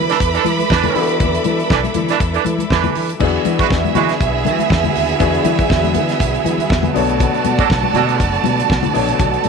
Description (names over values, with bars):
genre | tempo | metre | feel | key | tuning
disco | 120 BPM | 4/4 | swing 56% on 16ths | unclear | A4 = 443 Hz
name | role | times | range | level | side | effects
warm studio violin section | second line | 0.0-9.5 s | B3 to B5 | -19 LUFS | right 11 dB | tape echo
warm baby grand piano | accompaniment | 0.0-9.5 s | B2 to C#5 | -23 LUFS | left 14 dB | none
clear studio string section | sustained chords | 0.0-9.5 s | D3 to D6 | -24 LUFS | left 1 dB | none
fingered electric bass | bass | 0.0-9.5 s | F#1 to E3 | -21 LUFS | left 1 dB | none
warm horn section | stabs | 0.1-4.1, 7.6-8.2 s | E3 to B4 | -20 LUFS | right 11 dB | none
damped 70s drum kit | drums | 0.1-9.5 s | crash cymbal, hi-hat, kick drum, snare drum | -20 LUFS | equal | none
congas | percussion | 0.2-9.5 s | none | -24 LUFS | left 13 dB | none
room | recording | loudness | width
light reverb, studio reverb | 1960s-style stereo with parts hard left and right | -13 LUFS | side -5 dB against mid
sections
0.0-3.2 A section; 3.2-9.5 B section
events
none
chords
0.0 E7sus4; 3.2 E9; 7.0 Bm7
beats
0.20 0.70 | 1.21 1.71 2.21 2.71 | 3.21 3.71 4.21 4.70 | 5.20 5.70 6.20 6.70 | 7.20 7.70 8.20 8.70 | 9.20